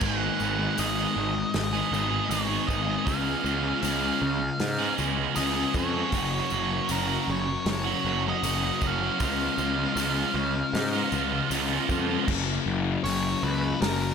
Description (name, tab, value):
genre	rock, shoegaze and dream pop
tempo	78 BPM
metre	4/4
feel	straight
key	F# major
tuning	A4 = 440 Hz
part	octave-fuzz lead guitar	melody	0.0-14.1 s	A#4 to F#5	-32 LUFS	equal	distortion, tape echo
part	biting overdriven guitar	riff	0.0-12.3 s	F#2 to G#4	-30 LUFS	right 13 dB	reverse reverb
part	thick fuzz guitar	riff	0.0-14.1 s	F#2 to C#4	-30 LUFS	left 11 dB	distortion, analog chorus
part	fuzz picked electric bass	bass	0.0-14.1 s	F#1 to G#2	-30 LUFS	right 1 dB	overdrive
part	loose indie drum kit	drums	0.0-14.0 s	crash cymbal, hi-hat, kick drum, snare drum	-34 LUFS	equal	none
part	tambourine	percussion	0.0-12.1 s	none	-42 LUFS	left 10 dB	none
room	light reverb, small room reverb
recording	none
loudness	-24 LUFS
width	side -6 dB against mid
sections	0.0-12.3 A section; 12.3-14.1 B section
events	none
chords	0.0 G#m7; 3.1 C#7; 6.1 F#; 9.2 C#7; 12.3 F#5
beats	| 0.02 0.78 1.55 2.31 | 3.08 3.84 4.61 5.37 | 6.14 6.91 7.67 8.44 | 9.21 9.97 10.74 11.51 | 12.28 13.04 13.81